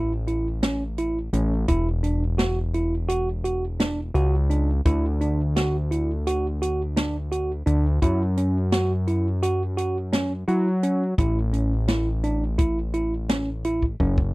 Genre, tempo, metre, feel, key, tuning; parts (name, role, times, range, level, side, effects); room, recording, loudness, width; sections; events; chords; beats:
progressive instrumental, band music in an uneven meter; 171 BPM (eighths); 9/8; straight; A4 = 443 Hz
tine electric piano; arpeggios; 0.0-14.2 s; C#4 to F#4; -26 LUFS; right 2 dB
fat analog bass; bass; 0.0-14.3 s; E1 to F#3; -24 LUFS; equal
open jazz drum kit; drums; 0.3-14.3 s; hi-hat, kick drum, snare drum; -24 LUFS; equal
little or no reverb; dry, close 1970s-style studio recording; -21 LUFS; side -21 dB against mid
0.0-14.3 A section
drum fill 13.8-14.3
0.0 A; 1.7 Esus2; 4.9 Dadd9; 8.0 F#5; 11.2 A
0.28 0.63 0.99 1.34 | 1.69 2.04 2.39 2.75 3.10 3.45 3.80 4.15 4.50 | 4.86 5.21 5.56 5.91 6.26 6.62 6.97 7.32 7.67 | 8.02 8.37 8.72 9.08 9.43 9.78 10.13 10.48 10.83 | 11.19 11.54 11.89 12.24 12.59 12.94 13.29 13.65 14.00